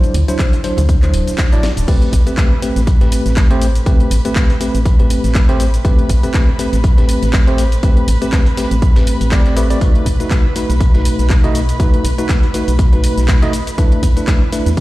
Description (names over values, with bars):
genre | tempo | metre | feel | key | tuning
deep house | 121 BPM | 4/4 | swing 56% on 16ths | A dorian | A4 = 440 Hz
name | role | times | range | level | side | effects
bell-like tine electric piano | stabs | 0.0-14.7 s | F#3 to D#5 | -19 LUFS | equal | medium stereo tremolo, sidechain pumping, dub echo
house drum kit | drums | 0.0-14.8 s | crash cymbal, handclaps, hi-hat, shaker, snare drum | -25 LUFS | left 1 dB | none
organ-like FM bass | bass | 0.1-14.8 s | D1 to E2 | -15 LUFS | equal | sidechain pumping
dusty soul sampler-style drum kit | drums | 0.1-14.8 s | hi-hat, snare drum, tambourine | -34 LUFS | left 1 dB | none
congas | percussion | 0.1-0.9 s | none | -28 LUFS | right 2 dB | none
electronic kick drum | drums | 0.4-14.8 s | none | -12 LUFS | equal | none
dark studio violin section | texture | 1.9-14.8 s | B4 to B5 | -29 LUFS | right 1 dB | sidechain pumping
room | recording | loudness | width
little or no reverb | played on a big sound system in a bare room, large studio reverb | -11 LUFS | side -18 dB against mid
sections
0.0-1.9 A section; 1.9-14.8 B section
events
drum fill 1.6; drop 1.9-14.8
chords
0.0 D9; 1.9 Am9; 9.8 B7; 13.5 E7sus4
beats
0.39 0.89 1.38 | 1.88 2.38 2.87 3.37 | 3.86 4.36 4.86 5.35 | 5.85 6.34 6.84 7.33 | 7.83 8.33 8.82 9.32 | 9.81 10.31 10.81 11.30 | 11.80 12.29 12.79 13.29 | 13.78 14.28 14.77